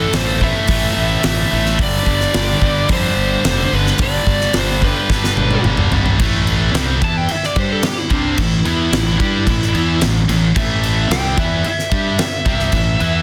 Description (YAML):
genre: hard rock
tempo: 110 BPM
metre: 4/4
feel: straight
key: A minor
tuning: A4 = 440 Hz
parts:
  - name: high-gain lead guitar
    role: melody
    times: 0.0-13.2 s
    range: D4 to A5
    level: -23 LUFS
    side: equal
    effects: distortion, slapback echo
  - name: heavy high-gain guitar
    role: riff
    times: 0.0-13.2 s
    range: G2 to G4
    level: -24 LUFS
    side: equal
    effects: distortion
  - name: scooped high-gain guitar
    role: riff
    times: 0.0-13.2 s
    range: G2 to G4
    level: -25 LUFS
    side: equal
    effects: distortion
  - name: fuzz fingered electric bass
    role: bass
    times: 0.0-13.2 s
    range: F1 to G2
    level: -22 LUFS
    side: equal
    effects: overdrive
  - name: huge arena drum kit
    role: drums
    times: 0.1-13.1 s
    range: crash cymbal, hi-hat, kick drum, snare drum, toms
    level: -21 LUFS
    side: equal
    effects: none
room: small room ambience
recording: dense, heavily limited modern master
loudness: -16 LUFS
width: mono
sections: 0.0-6.2 A section; 6.2-13.2 B section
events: drum fill 5.1-6.2; lead electric guitar solo 6.2-13.2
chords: 0.0 A5; 1.8 G; 6.2 Am